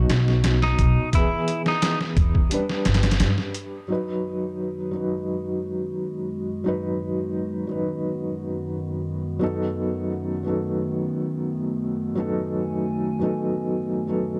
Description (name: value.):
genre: trip hop.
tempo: 87 BPM.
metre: 4/4.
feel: straight.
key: unclear.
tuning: A4 = 439 Hz.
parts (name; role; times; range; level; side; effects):
felt-muted upright piano; accompaniment; 0.0-14.4 s; B2 to B4; -29 LUFS; equal; tremolo, tape echo.
upright bass; bass; 0.0-3.4 s; G1 to G2; -24 LUFS; equal; none.
trip hop sampler-style drum kit; drums; 0.1-3.7 s; hi-hat, kick drum, snare drum; -25 LUFS; equal; none.
clean electric guitar; melody; 0.6-2.0 s; D#4 to E4; -31 LUFS; equal; dub echo.
warbly tape-like pad; sustained chords; 4.2-14.4 s; F#2 to G#5; -32 LUFS; equal; chorus, built-in reverb, vintage 12-bit sampler grit.
room: light reverb.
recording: dark, warm production.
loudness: -25 LUFS.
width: mono.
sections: 0.0-3.9 A section; 3.9-14.4 B section.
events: filter sweep on felt piano 0.0-3.9; kick drops out 2.5-3.9.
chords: 0.0 B; 1.1 E; 2.5 G; 3.9 G#m7/F#; 9.4 B7/F#.